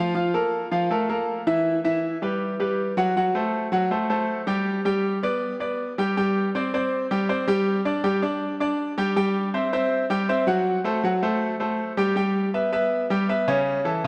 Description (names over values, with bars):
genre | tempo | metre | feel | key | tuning
latin | 160 BPM | 4/4 | straight | unclear | A4 = 439 Hz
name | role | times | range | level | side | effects
bright concert grand piano | solo | 0.0-14.1 s | C#3 to G5 | -24 LUFS | equal | none
room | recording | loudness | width
wet plate reverb, RT60 2.9 s | heard from further back in the room | -24 LUFS | mono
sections
0.0-6.2 A section; 6.2-14.1 B section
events
none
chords
0.2 Bb5; 1.7 Emadd9; 3.2 F#dim; 4.7 G; 6.2 Csus2; 7.7 G5; 9.2 C; 10.7 F#dim; 12.2 Em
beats
| 0.16 0.53 0.91 1.28 | 1.66 2.04 2.41 2.79 | 3.16 3.54 3.91 4.29 | 4.66 5.04 5.42 5.79 | 6.17 6.54 6.92 7.29 | 7.67 8.04 8.42 8.79 | 9.17 9.54 9.92 10.29 | 10.67 11.04 11.42 11.79 | 12.17 12.54 12.92 13.29 | 13.67 14.04